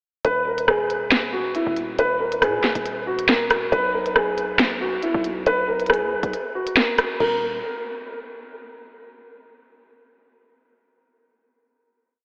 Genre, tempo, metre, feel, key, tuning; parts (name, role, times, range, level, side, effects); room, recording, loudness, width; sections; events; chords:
hip hop, drill; 138 BPM; 4/4; half-time; Eb phrygian; A4 = 443 Hz
dark concert grand piano; melody; 0.2-7.4 s; Fb4 to Cb5; -25 LUFS; equal; low-pass filter, diffuse ambient delay
distorted 808-style bass; bass; 0.2-7.6 s; Eb1 to Bb2; -37 LUFS; equal; distortion
drill drum kit; drums; 0.2-7.3 s; crash cymbal, hi-hat, rim click, snare drum; -25 LUFS; equal
wet cathedral reverb, RT60 4.5 s; dreamy mix soaked in reverb, telephone sound; -22 LUFS; mono
0.2-7.2 hook; 7.2-8.9 final chord
kick muted 6.3-7.2
0.2 Eb5; 3.7 B5; 7.2 Eb5